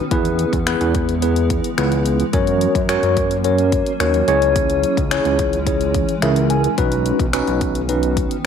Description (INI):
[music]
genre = dance-pop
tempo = 108 BPM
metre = 4/4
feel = straight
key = B major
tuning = A4 = 440 Hz
[part]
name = tine electric piano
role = accompaniment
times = 0.0-8.4 s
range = B3 to G#5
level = -18 LUFS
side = left 1 dB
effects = medium stereo tremolo, sidechain pumping
[part]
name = granular cloud pad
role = sustained chords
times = 0.0-8.5 s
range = D#3 to C#4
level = -26 LUFS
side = right 1 dB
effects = built-in reverb, sidechain pumping
[part]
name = fat analog bass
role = bass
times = 0.1-8.3 s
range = B1 to F#2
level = -21 LUFS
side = equal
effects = sidechain pumping
[part]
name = pop drum kit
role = drums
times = 0.1-8.4 s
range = finger snaps, hi-hat, kick drum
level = -22 LUFS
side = left 2 dB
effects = none
[sound]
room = light reverb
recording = 1960s-style stereo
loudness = -15 LUFS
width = side -7 dB against mid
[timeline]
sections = 0.0-8.5 A section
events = tine electric piano fill 5.9-6.8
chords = 0.1 E; 2.3 F#; 4.3 C#m; 6.8 Badd9